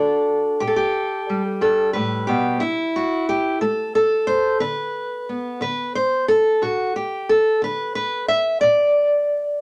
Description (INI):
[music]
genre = folk, solo fingerstyle acoustic guitar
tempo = 60 BPM (dotted quarters)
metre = 6/8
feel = straight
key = unclear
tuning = A4 = 437 Hz
[part]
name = fingerpicked steel-string acoustic guitar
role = solo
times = 0.0-9.6 s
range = G2 to E5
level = -20 LUFS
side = equal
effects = none
[sound]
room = light reverb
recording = none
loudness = -20 LUFS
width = mono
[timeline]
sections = 0.0-9.6 A section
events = none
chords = 0.0 Bm (rootless); 0.6 Gadd9; 2.6 Am/C; 4.6 Bm/D; 5.6 N.C.; 6.6 Bm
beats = | 0.61 1.61 | 2.62 3.62 | 4.62 5.62 | 6.62 7.62 | 8.63